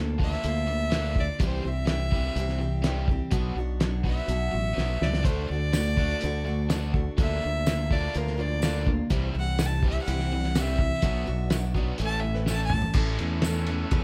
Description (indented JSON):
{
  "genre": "folk rock and heartland rock",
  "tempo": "124 BPM",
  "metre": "4/4",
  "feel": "straight",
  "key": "unclear",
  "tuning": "A4 = 440 Hz",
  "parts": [
    { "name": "picked steel-string acoustic guitar", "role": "accompaniment", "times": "0.0-14.0 s", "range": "A2 to G4", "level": "-38 LUFS", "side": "equal", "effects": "none" },
    { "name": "biting overdriven guitar", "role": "riff", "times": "0.0-14.0 s", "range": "A2 to A4", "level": "-37 LUFS", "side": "equal", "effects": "none" },
    { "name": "modern bright fingered electric bass", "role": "bass", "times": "0.0-14.0 s", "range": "A1 to E2", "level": "-31 LUFS", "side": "equal", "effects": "none" },
    { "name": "dark fiddle", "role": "melody", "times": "0.2-13.0 s", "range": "Bb4 to A5", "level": "-34 LUFS", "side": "equal", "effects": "none" },
    { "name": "cloth-damped thuddy drum kit", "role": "drums", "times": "0.2-14.0 s", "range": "crash cymbal, hi-hat, kick drum, ride cymbal, snare drum, toms", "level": "-30 LUFS", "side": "equal", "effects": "none" },
    { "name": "mellow tonewheel organ", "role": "sustained chords", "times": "5.3-14.0 s", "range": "A3 to C#6", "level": "-46 LUFS", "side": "equal", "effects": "none" },
    { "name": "tambourine", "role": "percussion", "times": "5.7-13.6 s", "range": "none", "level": "-44 LUFS", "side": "equal", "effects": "none" }
  ],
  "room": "little or no reverb",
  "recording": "none",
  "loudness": "-27 LUFS",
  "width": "mono",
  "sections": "0.0-13.0 A section; 13.0-14.0 B section",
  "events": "fiddle solo 0.0-13.0; drum fill 4.8-5.3, 12.5-13.0",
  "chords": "0.0 Bb/D; 1.4 C; 3.3 Bm; 5.3 D; 7.2 Bb/D; 9.1 C; 11.0 Bm; 12.0 A"
}